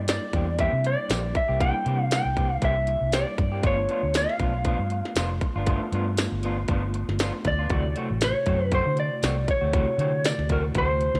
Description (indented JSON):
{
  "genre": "straight-eighth soul blues",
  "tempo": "118 BPM",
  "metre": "4/4",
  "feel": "swing 55% on 16ths",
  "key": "G mixolydian",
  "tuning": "A4 = 440 Hz",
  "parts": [
    { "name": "electric guitar through a small old amp", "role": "melody", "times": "0.0-11.2 s", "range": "Bb4 to G5", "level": "-29 LUFS", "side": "equal", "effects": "none" },
    { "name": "overdriven tine electric piano", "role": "accompaniment", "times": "0.0-11.2 s", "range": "C3 to F#4", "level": "-36 LUFS", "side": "equal", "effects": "medium tremolo" },
    { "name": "vintage muted fingered electric bass", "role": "bass", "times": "0.0-11.2 s", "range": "F1 to D3", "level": "-30 LUFS", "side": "equal", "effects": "none" },
    { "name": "electric guitar through a small old amp", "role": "stabs", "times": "0.1-11.1 s", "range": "E3 to G4", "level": "-37 LUFS", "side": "equal", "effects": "spring reverb" },
    { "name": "glitchy drum kit", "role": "drums", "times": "0.1-11.2 s", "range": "hi-hat, kick drum, snare drum, tambourine", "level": "-29 LUFS", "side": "equal", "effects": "none" }
  ],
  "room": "light reverb, digital ambience",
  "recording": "none",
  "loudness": "-25 LUFS",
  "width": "mono",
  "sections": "0.0-11.2 A section",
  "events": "none",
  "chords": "0.0 C7; 3.6 G7; 7.7 D7"
}